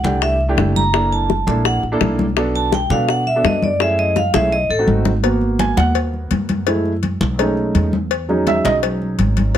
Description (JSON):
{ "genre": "Afro-Cuban jazz", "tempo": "167 BPM", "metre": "4/4", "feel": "straight", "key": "G# minor from 5.2 s", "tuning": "A4 = 440 Hz", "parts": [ { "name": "vibraphone with medium hard mallets", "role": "melody", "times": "0.0-4.8 s", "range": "A4 to A#5", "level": "-18 LUFS", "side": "right 1 dB", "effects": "none" }, { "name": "warm upright piano", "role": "accompaniment", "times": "0.0-9.6 s", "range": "F#3 to G#5", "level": "-20 LUFS", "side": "right 2 dB", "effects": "none" }, { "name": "upright bass", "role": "bass", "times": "0.0-9.6 s", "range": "F#1 to B2", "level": "-20 LUFS", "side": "equal", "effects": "none" }, { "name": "congas", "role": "percussion", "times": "0.0-9.6 s", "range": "none", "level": "-22 LUFS", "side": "left 2 dB", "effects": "none" }, { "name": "bongos and cowbell", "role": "percussion", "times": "0.2-9.6 s", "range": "none", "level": "-22 LUFS", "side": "left 11 dB", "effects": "none" } ], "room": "light reverb", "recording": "close, detailed microphones", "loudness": "-15 LUFS", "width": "side -10 dB against mid", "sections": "0.0-5.2 A section; 5.2-9.6 A section", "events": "vibraphone solo 0.0-5.2; drum fill 4.2-5.2; upright piano solo 5.2-9.6", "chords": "0.0 C6; 0.9 F#7alt; 2.4 Bm7; 3.8 F#m9; 4.5 B7b9; 5.2 G#m9; 6.7 F#m9; 7.4 B13; 8.1 Emaj13" }